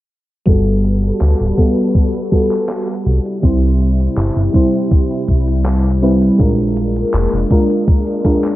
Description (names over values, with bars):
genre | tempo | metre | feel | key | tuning
vaporwave | 81 BPM | 4/4 | straight | G major | A4 = 439 Hz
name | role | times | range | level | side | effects
FM electric piano with soft pad layer | accompaniment | 0.5-8.6 s | G3 to C5 | -16 LUFS | equal | lush chorus, analog delay
soft string machine | sustained chords | 0.8-8.6 s | C3 to B4 | -22 LUFS | equal | phaser, ensemble chorus
chorused synth bass | bass | 0.5-7.5 s | D1 to D2 | -15 LUFS | equal | none
electronic kick drum | drums | 0.5-8.4 s | none | -14 LUFS | equal | none
gated 80s digital drum machine | drums | 0.5-8.6 s | handclaps, hi-hat | -30 LUFS | equal | gated reverb, overdrive
room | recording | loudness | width
little or no reverb | dry, gritty hardware recording, transformer saturation, cassette tape, low-pass filter | -12 LUFS | side -16 dB against mid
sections
0.5-8.6 A section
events
none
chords
0.5 Gmaj9; 3.1 C; 6.4 Bb7